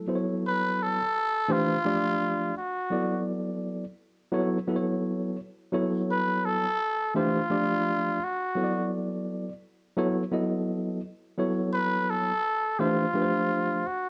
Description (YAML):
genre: hip hop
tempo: 85 BPM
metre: 4/4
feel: swing 60% on 16ths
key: B minor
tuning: A4 = 439 Hz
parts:
  - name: tine electric piano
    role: accompaniment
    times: 0.0-13.9 s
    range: E3 to D#5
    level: -29 LUFS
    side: equal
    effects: overdrive
  - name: trumpet with cup mute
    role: melody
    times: 0.5-14.1 s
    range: F4 to B4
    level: -29 LUFS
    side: equal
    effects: none
room: moderate studio reverb, RT60 0.6 s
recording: worn, warbling old tape, cassette tape, warbly pitch drift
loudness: -28 LUFS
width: mono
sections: 0.1-14.1 A section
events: none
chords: 0.1 Bsus2; 1.5 Dm9; 2.9 Esus2; 4.3 F#m7; 7.1 Dm9; 8.6 Esus2; 10.0 F#m7; 11.4 Bsus2; 12.8 Dm9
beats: | 0.09 0.80 1.50 2.21 | 2.91 3.62 4.33 5.03 | 5.74 6.44 7.15 7.86 | 8.56 9.27 9.97 10.68 | 11.38 12.09 12.80 13.50